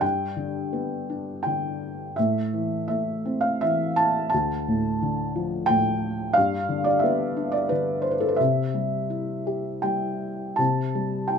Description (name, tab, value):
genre	classical, lyrical solo piano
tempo	78-90 BPM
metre	3/4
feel	rubato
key	C major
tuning	A4 = 440 Hz
part	felt-muted upright piano	solo	0.0-11.4 s	D2 to A5	-22 LUFS	equal	none
room	moderate studio reverb, RT60 0.6 s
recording	minimal, uncompressed stereo recording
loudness	-22 LUFS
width	side -6 dB against mid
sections	0.0-10.6 A section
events	none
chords	0.0 G; 2.2 Am; 4.3 Dm; 6.4 G; 8.4 C; 10.6 C5